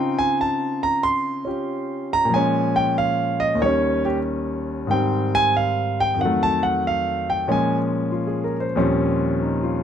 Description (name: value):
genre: solo jazz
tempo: 93 BPM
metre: 4/4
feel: swing 69% on 8ths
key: unclear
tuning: A4 = 439 Hz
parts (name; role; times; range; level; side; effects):
- warm grand piano; solo; 0.0-9.8 s; Eb2 to C6; -19 LUFS; equal; none
room: little or no reverb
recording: close, detailed microphones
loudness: -19 LUFS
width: side -8 dB against mid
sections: 0.0-9.8 A section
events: grand piano solo 0.0-9.8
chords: 0.0 Dbmaj9; 2.3 Bbm7; 3.6 Eb7; 4.9 Abmaj7; 6.2 F7b9; 7.5 Bbm7; 8.8 Eb13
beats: 0.37 1.01 1.66 | 2.31 2.95 3.60 4.24 | 4.89 5.53 6.18 6.83 | 7.47 8.12 8.76 9.41